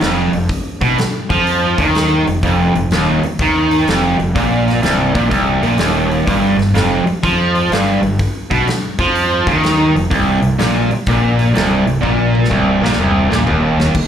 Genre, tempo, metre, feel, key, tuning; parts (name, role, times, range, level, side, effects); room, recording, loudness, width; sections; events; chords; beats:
blues rock power trio and southern rock; 125 BPM; 4/4; swing 66% on 8ths; A4 = 440 Hz
distorted electric guitar; riff; 0.0-13.9 s; C2 to F3; -14 LUFS; right 1 dB; overdrive
fuzz fingered electric bass; bass; 0.0-14.1 s; C1 to F2; -20 LUFS; equal; overdrive
big rock drum kit; drums; 0.0-14.1 s; crash cymbal, hi-hat, kick drum, snare drum, toms; -21 LUFS; equal
small room reverb; live gig heard through the venue's PA, club ambience; -12 LUFS; side -9 dB against mid
0.0-14.0 A section
drum fill 12.0-14.0
0.0 Ebsus2; 4.3 Cm7; 6.3 Fsus2; 8.2 Ebsus2/F; 10.1 Cm7
0.02 | 0.50 0.98 1.46 1.94 | 2.43 2.91 3.39 3.87 | 4.35 4.83 5.31 5.79 | 6.27 6.75 7.23 7.71 | 8.19 8.67 9.15 9.63 | 10.11 10.59 11.07 11.55 | 12.03 12.51 12.99 13.47 | 13.95